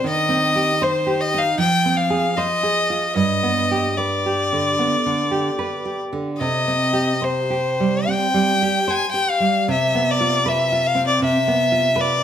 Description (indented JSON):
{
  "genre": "romantic duo for violin and classical guitar",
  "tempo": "75 BPM",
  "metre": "4/4",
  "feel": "uneven beats, rubato",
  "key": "C minor",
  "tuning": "A4 = 439 Hz",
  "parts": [
    { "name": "clear violin", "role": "melody", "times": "0.0-12.2 s", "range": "C5 to Ab5", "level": "-19 LUFS", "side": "left 3 dB", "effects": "none" },
    { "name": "nylon-string guitar", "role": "accompaniment", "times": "0.0-12.2 s", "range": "G2 to C5", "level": "-21 LUFS", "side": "right 3 dB", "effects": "none" }
  ],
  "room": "moderate recital hall reverb, RT60 1.3 s",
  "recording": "none",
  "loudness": "-17 LUFS",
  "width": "side -9 dB against mid",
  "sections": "0.0-12.2 A section",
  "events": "none",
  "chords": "0.1 Cm/Eb; 1.6 Fm9; 3.2 G; 6.4 Cm; 9.7 Bdim/C"
}